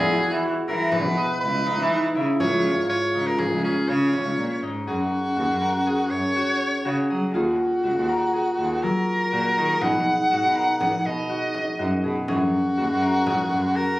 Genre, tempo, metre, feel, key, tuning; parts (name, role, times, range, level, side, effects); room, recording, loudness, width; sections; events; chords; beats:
contemporary instrumental, chamber music in an uneven meter; 121 BPM; 5/4; straight; F# major; A4 = 444 Hz
clear soprano saxophone; melody; 0.0-14.0 s; F#4 to F#5; -24 LUFS; equal
vibraphone with medium mallets; second line; 0.0-14.0 s; C#4 to E#4; -26 LUFS; equal
concert harp; arpeggios; 0.0-14.0 s; F#3 to D#5; -30 LUFS; left 3 dB
rich cello; bass; 0.0-13.7 s; C#2 to F#3; -26 LUFS; right 1 dB
frame drum; percussion; 0.9-4.8, 9.8-13.5 s; -31 LUFS; left 1 dB
light reverb; recorded on a phone in the room, studio reverb, compression; -20 LUFS; side -17 dB against mid
0.0-4.9 A section; 4.9-14.0 B section
0.0 E; 2.4 C#; 4.9 F#add9; 7.3 D#m; 9.8 B; 12.3 F#
0.43 0.92 1.42 1.91 | 2.40 2.90 3.39 3.89 4.38 | 4.88 5.37 5.86 6.36 6.85 | 7.35 7.84 8.33 8.83 9.32 | 9.81 10.31 10.80 11.30 11.79 | 12.28 12.78 13.27 13.76